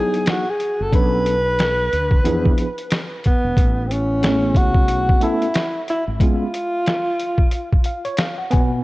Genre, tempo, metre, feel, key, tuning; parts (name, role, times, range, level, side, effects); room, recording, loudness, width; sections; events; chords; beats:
hip hop, jazz-hop; 91 BPM; 4/4; swing 59% on 16ths; A4 = 439 Hz
mellow alto saxophone; melody; 0.0-8.2 s; B3 to B4; -21 LUFS; equal; analog delay
tine electric piano; accompaniment; 0.0-8.8 s; B2 to G#5; -23 LUFS; equal; overdrive, fast stereo tremolo
lo-fi sampler-style drum kit; drums; 0.1-8.7 s; hi-hat, kick drum, snare drum; -18 LUFS; equal
fretless electric bass; bass; 0.8-6.2 s; E1 to E2; -24 LUFS; equal; lush chorus
light reverb; worn, warbling old tape, cassette tape, warbly pitch drift; -16 LUFS; side -20 dB against mid
0.0-8.8 A section
tine electric piano fill 7.5-8.8
0.0 Emaj9; 0.9 Bm7; 2.2 E7b9; 3.6 Amaj7; 6.2 C#7
0.27 | 0.93 1.59 2.25 2.91 | 3.57 4.23 4.89 5.54 | 6.21 6.86 7.52 8.18